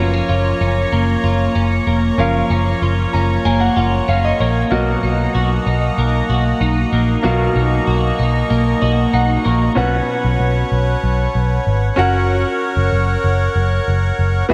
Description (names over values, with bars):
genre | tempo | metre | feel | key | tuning
pop | 95 BPM | 4/4 | straight | F# major | A4 = 437 Hz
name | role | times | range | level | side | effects
clear concert grand piano | accompaniment | 0.0-14.5 s | B2 to C#6 | -24 LUFS | equal | none
accordion | sustained chords | 0.0-14.5 s | A#3 to C#6 | -24 LUFS | equal | light tremolo tuning
twelve-string electric guitar | riff | 0.0-10.3 s | E#3 to F#4 | -23 LUFS | equal | ensemble chorus, analog delay
vintage muted picked electric bass | bass | 0.0-14.5 s | E1 to B1 | -19 LUFS | equal | none
room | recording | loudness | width
moderate lush hall reverb, RT60 2.7 s | dreamy mix soaked in reverb | -16 LUFS | mono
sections
0.0-9.8 A section; 9.8-14.5 B section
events
grand piano fill 2.8-4.7, 8.5-9.8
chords
0.0 F#maj7; 4.7 Bmaj7; 9.8 Bsus2; 12.0 F#